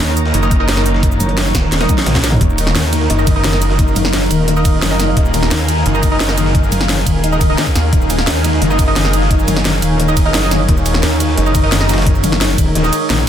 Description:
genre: dark technical drum and bass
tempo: 174 BPM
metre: 4/4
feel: straight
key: Eb minor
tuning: A4 = 440 Hz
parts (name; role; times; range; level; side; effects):
- metallic inharmonic drone; sustained chords; 0.0-13.3 s; Eb3 to Db5; -23 LUFS; right 2 dB; chorus, built-in reverb, sidechain pumping
- metallic wobble bass; bass; 0.0-13.3 s; Eb1 to Eb2; -16 LUFS; equal; chorus
- breakbeat sampler-style drum kit; drums; 0.0-13.2 s; hi-hat, snare drum; -26 LUFS; equal; none
- drum and bass drum kit; drums; 0.0-13.3 s; cabasa, hi-hat, ride cymbal, snare drum, toms; -19 LUFS; equal; none
- granular cloud pad; texture; 0.0-13.3 s; Eb4 to Db6; -21 LUFS; right 1 dB; built-in reverb, sidechain pumping
- snarling distorted saw bass; bass; 0.3-12.2 s; Eb1 to Eb2; -16 LUFS; equal; distortion, overdrive, sidechain pumping
- orchestra-hit-like synth stab; stabs; 0.4-12.9 s; Eb4 to Eb5; -20 LUFS; right 2 dB; built-in reverb, digital delay
- electronic kick drum; drums; 0.5-12.7 s; none; -14 LUFS; equal; none
- felt-muted upright piano; arpeggios; 2.4-13.2 s; Eb3 to Eb4; -22 LUFS; left 7 dB; sidechain pumping, digital delay
room: light reverb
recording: dense, heavily limited modern master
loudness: -11 LUFS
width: side -10 dB against mid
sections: 0.0-13.3 A section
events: drum fill 1.7-2.4; kick drops out 12.8-13.3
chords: 0.0 Eb5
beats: 0.00 0.34 0.69 | 1.03 1.38 1.72 2.06 | 2.41 2.75 3.10 3.44 | 3.79 4.13 4.48 4.82 | 5.17 5.51 5.86 6.20 | 6.55 6.89 7.24 7.58 | 7.93 8.27 8.62 8.96 | 9.31 9.65 10.00 10.34 | 10.69 11.03 11.38 11.72 | 12.06 12.41 12.75 13.10

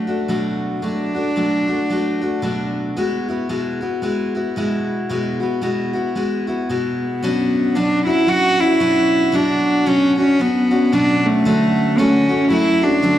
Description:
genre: folk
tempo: 113 BPM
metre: 4/4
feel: swing 60% on 8ths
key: B dorian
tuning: A4 = 440 Hz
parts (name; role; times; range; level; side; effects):
- warm cello; melody; 0.0-2.7, 7.0-13.2 s; A3 to F#4; -16 LUFS; equal; none
- picked steel-string acoustic guitar; accompaniment; 0.0-13.2 s; B2 to F#4; -19 LUFS; left 1 dB; none
room: wet recital hall reverb, RT60 1.4 s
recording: none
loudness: -16 LUFS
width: side -12 dB against mid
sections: 0.0-7.2 A section; 7.2-13.2 B section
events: none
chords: 0.0 Bm7; 3.0 Eadd9/B; 7.2 Bmadd9; 11.5 Dmaj7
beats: 0.30 | 0.83 1.37 1.90 2.43 | 2.96 3.50 4.03 4.56 | 5.09 5.62 6.16 6.69 | 7.22 7.75 8.28 8.81 | 9.34 9.87 10.39 10.92 | 11.45 11.98 12.51 13.04

